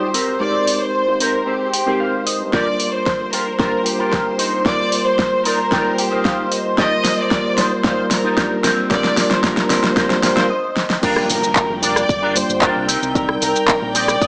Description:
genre	nu-disco, nu disco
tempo	113 BPM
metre	4/4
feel	straight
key	unclear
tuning	A4 = 440 Hz
part	warm symphonic violin section	melody	0.0-14.3 s	G4 to Eb5	-20 LUFS	equal	vintage 12-bit sampler grit, dub echo
part	mellow tine electric piano	accompaniment	0.0-14.3 s	G3 to D6	-22 LUFS	equal	medium stereo tremolo
part	dark studio string section	sustained chords	0.0-14.3 s	C5 to G5	-25 LUFS	equal	sidechain pumping
part	electric guitar with an envelope filter	riff	0.0-14.3 s	C4 to Bb5	-22 LUFS	equal	ensemble chorus, low-pass filter
part	fingered electric bass with an envelope filter	bass	0.0-14.3 s	F1 to Ab2	-33 LUFS	equal	none
part	pop drum kit	drums	0.1-14.3 s	crash cymbal, handclaps, hi-hat, rim click, shaker, snare drum	-19 LUFS	equal	none
part	electronic kick drum	drums	2.5-14.3 s	none	-21 LUFS	equal	none
part	impact	sound effects	11.1-13.2 s	none	-31 LUFS	equal	none
room	moderate plate reverb, RT60 1.4 s, digital ambience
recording	small speaker sound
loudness	-15 LUFS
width	side -39 dB against mid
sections	0.0-11.0 A section; 11.0-14.3 B section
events	build-up 0.0-11.0; clean electric guitar fill 1.5-2.5, 5.2-6.8, 10.0-11.0, 13.7-14.3; drum fill 2.5-10.5, 10.8; break 10.5-11.0; drop 11.0-14.3; impact 11.0-13.2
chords	0.1 Abmaj9; 2.5 Gm7; 4.4 Cm7; 6.8 Abmaj9; 11.0 Gm7; 12.9 Cm7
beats	| 0.41 0.94 1.47 2.00 | 2.53 3.06 3.60 4.13 | 4.66 5.19 5.72 6.25 | 6.78 7.31 7.84 8.38 | 8.91 9.44 9.97 10.50 | 11.03 11.56 12.09 12.62 | 13.15 13.69 14.22

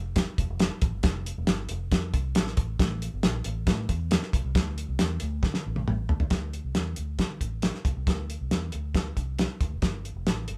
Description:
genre	uptempo 1960s-style soul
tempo	137 BPM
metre	4/4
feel	straight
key	D minor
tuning	A4 = 440 Hz
part	vintage muted fingered electric bass	bass	0.0-10.6 s	E1 to D3	-34 LUFS	equal	none
part	cloth-damped thuddy drum kit	drums	0.2-10.6 s	hi-hat, kick drum, snare drum, toms	-28 LUFS	equal	none
room	light reverb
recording	band playing live in one room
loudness	-28 LUFS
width	mono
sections	0.0-6.3 A section; 6.3-10.6 B section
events	drum fill 5.4-6.3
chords	none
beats	0.17 0.61 | 1.05 1.48 1.92 2.36 | 2.80 3.24 3.68 4.12 | 4.55 4.99 5.43 5.87 | 6.31 6.75 7.19 7.63 | 8.07 8.51 8.95 9.39 | 9.83 10.27

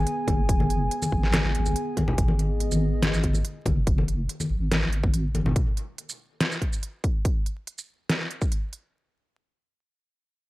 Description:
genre	deep dubstep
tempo	142 BPM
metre	4/4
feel	half-time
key	G# minor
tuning	A4 = 440 Hz
part	dark analog pad	sustained chords	0.0-3.9 s	B3 to G#5	-30 LUFS	equal	chorus
part	deep soft wobble bass	bass	0.0-5.5 s	F#1 to G#1	-25 LUFS	equal	chorus
part	dubstep drum kit	drums	0.1-8.8 s	handclaps, hi-hat, shaker, snare drum	-27 LUFS	equal	none
part	electronic kick drum	drums	0.3-8.5 s	none	-25 LUFS	equal	none
part	congas	percussion	0.3-5.5 s	none	-30 LUFS	left 2 dB	none
room	light reverb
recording	vinyl crackle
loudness	-23 LUFS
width	side -18 dB against mid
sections	0.0-2.2 A section; 2.2-8.9 B section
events	drop 0.0-2.2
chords	0.0 G#m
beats	0.07 | 0.49 0.91 1.33 1.76 | 2.18 2.60 3.02 3.45 | 3.87 4.29 4.71 5.14 | 5.56 5.98 6.40 6.83 | 7.25 7.67 8.09 8.52

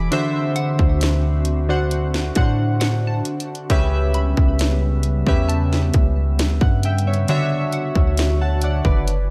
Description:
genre	contemporary R&B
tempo	67 BPM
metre	4/4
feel	straight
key	unclear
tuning	A4 = 440 Hz
part	warm analog keys	accompaniment	0.0-9.3 s	C#3 to D6	-25 LUFS	equal	chorus
part	glassy FM pad	sustained chords	0.0-9.3 s	C#3 to G#5	-31 LUFS	equal	ensemble chorus, built-in reverb, sidechain pumping
part	warm 808-style bass	bass	0.0-9.3 s	F#1 to A2	-22 LUFS	equal	none
part	trap drum kit	drums	0.1-9.3 s	hi-hat, kick drum, snare drum	-23 LUFS	equal	none
part	glassy wavetable pluck	texture	0.6-9.3 s	F#5 to B5	-36 LUFS	equal	chorus, digital delay
room	little or no reverb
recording	none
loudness	-19 LUFS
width	mono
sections	0.0-9.3 A section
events	none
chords	0.1 D7; 3.7 A7/C#; 7.3 Dmaj7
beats	| 0.12 1.01 1.91 2.80 | 3.70 4.59 5.49 6.38 | 7.28 8.18 9.07

